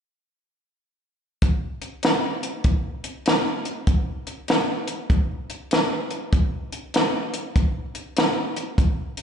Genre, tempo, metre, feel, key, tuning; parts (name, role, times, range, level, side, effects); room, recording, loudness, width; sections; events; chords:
blues; 98 BPM; 4/4; swing 64% on 8ths
compact cocktail drum kit; drums; 1.4-9.2 s; hi-hat, kick drum, snare drum; -21 LUFS; equal; slapback echo
wet lush hall reverb, RT60 1.8 s; live gig heard through the venue's PA, club reverb, nothing above 10.7 kHz; -21 LUFS; side -8 dB against mid
1.4-9.2 A section